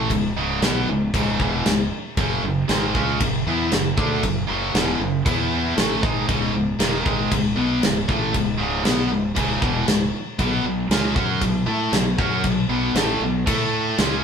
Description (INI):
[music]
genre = hard rock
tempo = 117 BPM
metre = 4/4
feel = straight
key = C# minor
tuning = A4 = 440 Hz
[part]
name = tight distorted guitar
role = riff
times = 0.0-14.2 s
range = C#2 to A4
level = -21 LUFS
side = equal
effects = distortion
[part]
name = fuzz fingered electric bass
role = bass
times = 0.0-14.2 s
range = C#1 to A2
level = -28 LUFS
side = equal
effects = overdrive
[part]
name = big rock drum kit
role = drums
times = 0.1-14.1 s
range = crash cymbal, kick drum, snare drum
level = -23 LUFS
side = equal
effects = none
[sound]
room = moderate studio reverb, RT60 0.8 s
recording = band playing live in one room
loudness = -19 LUFS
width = side -7 dB against mid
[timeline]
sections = 0.0-14.2 A section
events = none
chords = 0.0 C#m; 2.2 F#5; 5.3 E5; 5.8 Eadd11; 6.3 C#m; 10.4 B5; 13.5 A5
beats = | 0.10 0.61 1.13 1.65 | 2.16 2.68 3.19 3.71 | 4.23 4.74 5.26 5.77 | 6.29 6.80 7.31 7.83 | 8.34 8.85 9.37 9.88 | 10.39 10.90 11.42 11.93 | 12.44 12.96 13.47 13.98